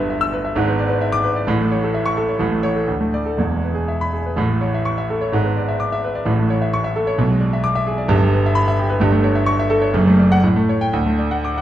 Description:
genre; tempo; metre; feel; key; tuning
classical, virtuoso piano study; 115-134 BPM; 2/4; rubato; A major, D major from 8.1 s; A4 = 444 Hz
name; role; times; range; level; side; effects
clear concert grand piano; solo; 0.0-11.6 s; E1 to E6; -16 LUFS; equal; none
room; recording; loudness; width
wet large studio reverb, RT60 1.4 s; dark, warm production; -16 LUFS; side -12 dB against mid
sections
0.0-4.4 A section; 4.4-11.6 B section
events
none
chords
0.0 Em/G; 0.6 E7/G#; 1.5 A; 2.9 D5; 3.4 E; 4.4 A; 5.3 E7/G#; 6.3 A; 7.2 E7/B; 8.1 Em/G; 9.0 A7/G; 9.9 D/F#; 10.4 A7; 10.9 D

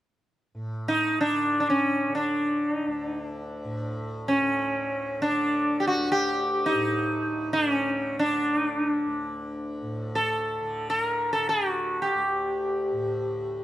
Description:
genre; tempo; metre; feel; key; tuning
indian classical; free time; none; none; unclear; A4 = 440 Hz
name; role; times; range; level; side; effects
tanpura; drone; 0.5-13.6 s; D2 to D3; -36 LUFS; equal; none
sitar; melody; 0.9-13.6 s; C#4 to Bb4; -24 LUFS; equal; none
room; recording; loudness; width
light reverb; close, detailed microphones; -24 LUFS; side -14 dB against mid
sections
0.5-13.6 A section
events
none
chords
none

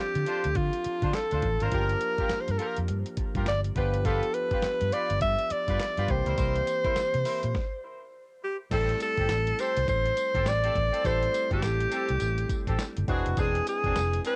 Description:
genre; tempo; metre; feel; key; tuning
R&B, new jack swing; 103 BPM; 4/4; swing 60% on 16ths; unclear; A4 = 440 Hz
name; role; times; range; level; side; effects
breathy alto saxophone; melody; 0.0-14.4 s; F4 to E5; -30 LUFS; equal; cassette tape, plate reverb
barky tine electric piano; accompaniment; 0.0-14.4 s; E3 to B4; -40 LUFS; equal; plate reverb
vintage muted fingered electric bass; bass; 0.2-14.2 s; E1 to D3; -32 LUFS; equal; none
dusty soul sampler-style drum kit; drums; 0.2-14.4 s; crash cymbal, handclaps, hi-hat, kick drum, snare drum, tambourine; -35 LUFS; equal; vintage 12-bit sampler grit, cassette tape
warm horn section; stabs; 0.3-14.4 s; C4 to C5; -40 LUFS; equal; plate reverb, analog delay
room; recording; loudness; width
moderate booth ambience, RT60 0.2 s; home recording on cassette; -28 LUFS; mono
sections
0.0-8.7 A section; 8.7-14.4 B section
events
stop 7.5-8.7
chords
0.0 Dm7; 1.7 Gm7; 3.8 G7; 6.1 C7; 8.7 Am7; 13.1 E7b13

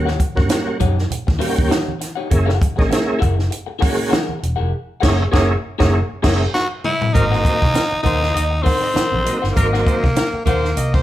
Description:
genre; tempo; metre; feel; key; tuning
funk; 99 BPM; 4/4; swing 56% on 16ths; unclear; A4 = 436 Hz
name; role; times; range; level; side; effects
tonewheel organ; stabs; 0.0-10.1 s; F#3 to G4; -22 LUFS; right 2 dB; chorus vibrato, fast rotary speaker
vintage muted fingered electric bass; bass; 0.0-11.0 s; Fb1 to G2; -21 LUFS; equal; none
electric guitar at the edge of break-up; accompaniment; 0.1-11.0 s; Eb4 to F#5; -26 LUFS; left 5 dB; none
compact cocktail drum kit; drums; 0.1-11.0 s; crash cymbal, hi-hat, kick drum, snare drum, toms; -19 LUFS; equal; none
congas; percussion; 0.2-10.6 s; none; -30 LUFS; right 5 dB; none
clear horn section; second line; 5.0-11.0 s; Bb3 to Eb5; -26 LUFS; right 2 dB; none
breathy tenor saxophone; melody; 6.5-11.0 s; Bb3 to Gb4; -20 LUFS; left 1 dB; none
room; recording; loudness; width
light reverb; band playing live in one room; -15 LUFS; side -14 dB against mid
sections
0.0-7.1 A section; 7.1-11.0 B section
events
band accent 4.7-7.1; drum fill 6.5-7.1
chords
0.0 Eb7#9; 2.3 Gb9; 7.1 Ab9

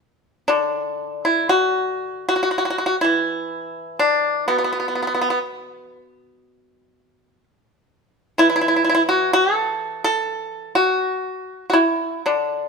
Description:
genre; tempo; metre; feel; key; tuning
chinese traditional, Chinese solo plucked strings; 61 BPM; 4/4; uneven beats, rubato; unclear; A4 = 441 Hz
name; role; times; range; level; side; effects
pipa; solo; 0.5-12.7 s; B2 to A4; -18 LUFS; equal; none
room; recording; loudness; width
moderate stone room reverb, RT60 1.3 s; band playing live in one room; -18 LUFS; side -4 dB against mid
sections
0.5-12.7 A section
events
none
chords
none

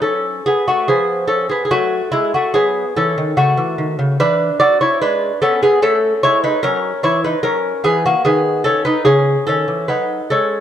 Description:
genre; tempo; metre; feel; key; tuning
classical, baroque-style dance for lute; 73 BPM; 3/4; rubato; unclear; A4 = 441 Hz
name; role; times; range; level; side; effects
lute; solo; 0.0-10.6 s; C#3 to D5; -14 LUFS; equal; slapback echo
room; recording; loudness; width
moderate plate reverb, RT60 2.4 s; dark, warm production; -14 LUFS; side -10 dB against mid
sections
0.0-10.6 A section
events
none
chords
0.0 F#m; 0.9 C#7/E#; 1.7 F#m; 4.2 E7; 5.8 A; 6.6 F#7; 8.2 B/D#; 9.1 C#m

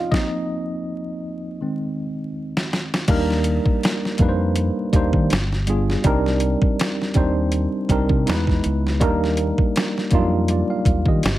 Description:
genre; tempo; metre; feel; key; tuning
R&B, neo-soul; 81 BPM; 4/4; swing 56% on 16ths; Eb major; A4 = 440 Hz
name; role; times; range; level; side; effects
tine electric piano; accompaniment; 0.0-11.4 s; Eb3 to F5; -22 LUFS; right 1 dB; overdrive, fast stereo tremolo
boom bap sampler-style drum kit; drums; 0.1-11.4 s; crash cymbal, hi-hat, kick drum, snare drum; -21 LUFS; equal; none
deep dub fingered electric bass; bass; 3.1-11.4 s; G1 to Eb3; -22 LUFS; equal; none
room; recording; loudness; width
light reverb; vinyl crackle; -18 LUFS; side -15 dB against mid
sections
0.0-3.1 A section; 3.1-11.4 B section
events
tine electric piano solo 0.0-3.1; drum fill 1.6-3.1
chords
0.1 F7sus4; 1.6 Ab/Eb; 3.1 Ebmaj7; 5.3 G7b9; 6.0 Cm9; 8.3 Emaj7; 9.0 Ebmaj7

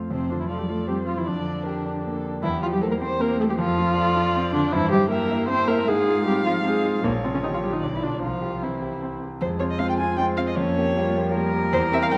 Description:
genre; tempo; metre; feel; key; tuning
quick classical-period movement for piano quartet; 155 BPM; 3/4; straight; F major, F minor from 4.7 s; A4 = 440 Hz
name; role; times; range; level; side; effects
bright concert grand piano; accompaniment; 0.0-12.2 s; Bb1 to C5; -28 LUFS; equal; none
muted violin; melody; 0.1-12.2 s; G4 to Ab5; -32 LUFS; equal; none
muted cello; second line; 0.1-12.2 s; Bb2 to Bb4; -30 LUFS; equal; none
muted viola; accompaniment; 0.1-12.2 s; F3 to C5; -28 LUFS; equal; none
room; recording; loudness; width
wet concert hall reverb, RT60 2.1 s; dark, warm production; -24 LUFS; mono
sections
0.1-9.4 A section; 9.4-12.2 B section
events
none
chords
0.1 F; 1.3 Gm7/F; 2.4 C7/E; 3.6 F; 4.7 C7/G; 5.9 Fm/Ab; 7.0 Gm7b5/Bb; 7.8 Bdim; 8.2 C; 9.4 Fm; 10.6 Gm7b5/F

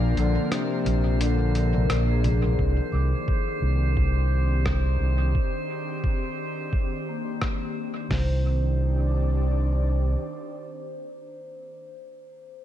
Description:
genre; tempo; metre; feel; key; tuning
ambient dub; 87 BPM; 4/4; swing 56% on 16ths; C minor; A4 = 440 Hz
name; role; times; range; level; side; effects
mellow trombone; melody; 0.0-2.2 s; Bb2 to D3; -33 LUFS; left 1 dB; dub echo
airy breathy pad; sustained chords; 0.0-11.6 s; Eb3 to D5; -32 LUFS; equal; chorus
vibraphone with soft mallets; arpeggios; 0.0-12.6 s; Bb3 to D6; -35 LUFS; left 4 dB; vintage 12-bit sampler grit, low-pass filter, dub echo
overdriven fingered electric bass; bass; 0.0-10.1 s; Bb1 to C2; -22 LUFS; equal; none
drifting glass-harmonics texture; texture; 0.0-8.1 s; C5; -35 LUFS; left 1 dB; chorus, built-in reverb
lo-fi sampler-style drum kit; drums; 0.2-7.6 s; congas, hi-hat, rim click; -33 LUFS; right 1 dB; studio reverb, dub echo
lo-fi sampler-style drum kit; drums; 2.6-8.3 s; hi-hat, kick drum, snare drum; -26 LUFS; equal; studio reverb
room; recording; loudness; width
light reverb, digital ambience; none; -22 LUFS; side -11 dB against mid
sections
0.0-2.6 A section; 2.6-8.1 B section; 8.1-10.9 C section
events
break 0.0-2.6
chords
0.0 Bb; 2.6 Cmadd9

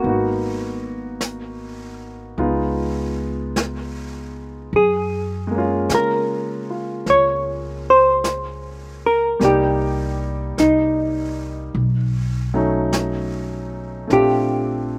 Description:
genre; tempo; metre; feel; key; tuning
jazz ballad; 51 BPM; 4/4; swing 68% on 8ths; unclear; A4 = 440 Hz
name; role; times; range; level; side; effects
hollow-body jazz guitar; melody; 0.0-15.0 s; Eb4 to Db5; -20 LUFS; equal; none
clear grand piano; accompaniment; 0.0-15.0 s; F#3 to D5; -26 LUFS; equal; none
upright bass; bass; 0.0-15.0 s; Ab1 to Db3; -29 LUFS; equal; none
jazz brush drum kit; drums; 0.0-15.0 s; brushed snare drum, hi-hat, snare drum; -30 LUFS; equal; slapback echo
room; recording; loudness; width
little or no reverb; recorded outdoors, with no room sound; -20 LUFS; mono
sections
0.0-15.0 A section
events
none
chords
0.0 Abm7; 2.4 Db7; 4.7 Gbmaj9; 9.4 Cm7; 11.7 B9; 14.1 Bbmaj7

